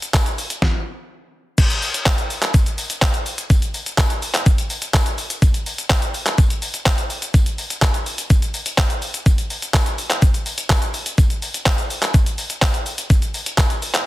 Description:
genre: pop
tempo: 125 BPM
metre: 4/4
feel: straight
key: none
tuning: none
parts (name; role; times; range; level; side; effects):
- detuned 8-bit digital drum machine; drums; 0.0-14.1 s; crash cymbal, handclaps, hi-hat, kick drum, shaker, snare drum; -16 LUFS; equal; soft clipping on snare
- tambourine; percussion; 0.1-14.1 s; none; -36 LUFS; left 5 dB; none
room: digital ambience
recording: dense, heavily limited modern master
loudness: -17 LUFS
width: side -17 dB against mid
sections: 0.0-1.6 A section; 1.6-14.1 A section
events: stop 0.6-1.6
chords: none

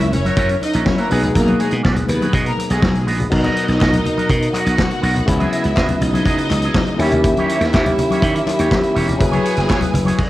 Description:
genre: disco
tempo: 122 BPM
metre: 4/4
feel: straight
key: unclear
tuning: A4 = 440 Hz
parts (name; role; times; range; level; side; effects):
- rich symphonic string section; second line; 0.0-10.2 s; G#3 to G#5; -22 LUFS; equal; cassette tape
- barky tine electric piano; accompaniment; 0.0-10.2 s; B2 to C#5; -23 LUFS; left 3 dB; overdrive, cassette tape
- electric guitar with an envelope filter; accompaniment; 0.0-10.2 s; A#3 to E5; -25 LUFS; right 3 dB; spring reverb, cassette tape
- slap bass; bass; 0.0-10.1 s; E1 to D#3; -18 LUFS; equal; none
- vintage drum kit; drums; 0.0-10.3 s; crash cymbal, hi-hat, kick drum, snare drum; -21 LUFS; equal; cassette tape
- congas; percussion; 0.0-10.2 s; none; -24 LUFS; left 3 dB; none
- mellow French horn section; sustained chords; 3.3-10.2 s; C#3 to B4; -25 LUFS; right 2 dB; cassette tape
- group handclap; percussion; 3.8-9.8 s; none; -32 LUFS; left 4 dB; none
room: light reverb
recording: home recording on cassette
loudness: -14 LUFS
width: side -16 dB against mid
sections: 0.0-3.3 A section; 3.3-10.3 B section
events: none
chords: 0.0 F#7; 1.1 B6; 3.3 Bmaj7; 5.3 C#m9; 7.0 D#7b9; 9.2 F#9sus4

